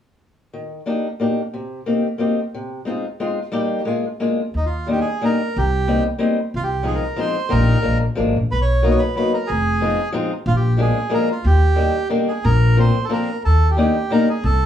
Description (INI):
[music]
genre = musette waltz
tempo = 182 BPM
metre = 3/4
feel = swing 53% on 8ths, rubato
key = Eb major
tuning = A4 = 439 Hz
[part]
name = fingerpicked swing-style acoustic guitar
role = accompaniment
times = 0.5-14.3 s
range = C3 to G4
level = -20 LUFS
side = left 2 dB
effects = none
[part]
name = upright bass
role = bass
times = 4.5-14.7 s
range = F1 to Eb2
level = -17 LUFS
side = equal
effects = none
[part]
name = bandoneon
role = melody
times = 4.6-14.7 s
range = Eb4 to D#5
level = -22 LUFS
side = right 2 dB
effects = none
[sound]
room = wet studio reverb, RT60 0.5 s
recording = heard from further back in the room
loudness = -17 LUFS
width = side -10 dB against mid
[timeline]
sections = 0.5-4.6 A section; 4.6-12.5 B section; 12.5-14.7 C section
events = none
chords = 0.5 Ebmaj7; 1.6 Cm7; 2.5 Fm7/C; 3.5 Eb; 3.9 Bb7; 4.6 Ebmaj7; 5.6 Cm7; 6.5 Fm7/C; 7.5 Eb/Bb; 7.8 Bb7; 8.5 Bmaj7; 9.5 Fm7; 10.5 Bb7; 11.4 Ebmaj7; 12.5 Bbadd9; 13.4 Ebmaj7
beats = | 0.55 0.89 1.23 | 1.56 1.89 2.22 | 2.55 2.87 3.20 | 3.54 3.87 4.21 | 4.55 4.89 5.22 | 5.56 5.89 6.21 | 6.54 6.86 7.19 | 7.51 7.84 8.17 | 8.51 8.84 9.17 | 9.50 9.82 10.14 | 10.46 10.79 11.12 | 11.45 11.78 12.12 | 12.45 12.79 13.12 | 13.45 13.77 14.10 | 14.43